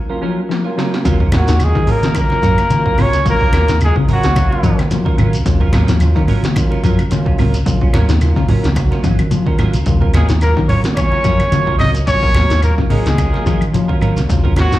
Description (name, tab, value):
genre	afrobeat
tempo	109 BPM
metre	4/4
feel	swing 55% on 16ths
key	Eb minor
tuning	A4 = 440 Hz
part	overdriven tine electric piano	accompaniment	0.1-14.6 s	Gb3 to F5	-26 LUFS	right 1 dB	slapback echo
part	semi-hollow electric guitar	stabs	0.1-14.7 s	Gb3 to Bb4	-24 LUFS	right 5 dB	analog chorus, slapback echo, analog delay
part	electric guitar at the edge of break-up	arpeggios	0.2-14.8 s	C3 to F3	-22 LUFS	left 6 dB	analog chorus, slapback echo
part	80s electronic pad drums	drums	0.5-14.8 s	hi-hat, kick drum, snare drum	-18 LUFS	equal	vintage 12-bit sampler grit
part	hollow-body short-scale fingered electric bass	bass	1.1-14.8 s	Bb1 to Eb3	-16 LUFS	equal	none
part	shekere	percussion	1.1-14.8 s	none	-26 LUFS	equal	none
part	claves	percussion	1.3-14.7 s	none	-35 LUFS	left 2 dB	slapback echo
part	congas	percussion	1.3-14.7 s	none	-20 LUFS	equal	none
part	breathy trumpet	melody	1.4-4.9, 10.2-14.8 s	Gb4 to Eb5	-18 LUFS	left 1 dB	slapback echo
part	clear tenor saxophone	second line	1.4-4.9, 10.2-14.8 s	Gb3 to Eb4	-26 LUFS	right 2 dB	slapback echo
room	little or no reverb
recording	live gig heard through the venue's PA, club reverb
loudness	-12 LUFS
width	side -15 dB against mid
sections	0.0-1.1 A section; 1.1-14.8 B section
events	break 0.0-1.1; drum fill 0.5-1.1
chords	0.0 Ebm9 (rootless); 1.1 Ebm9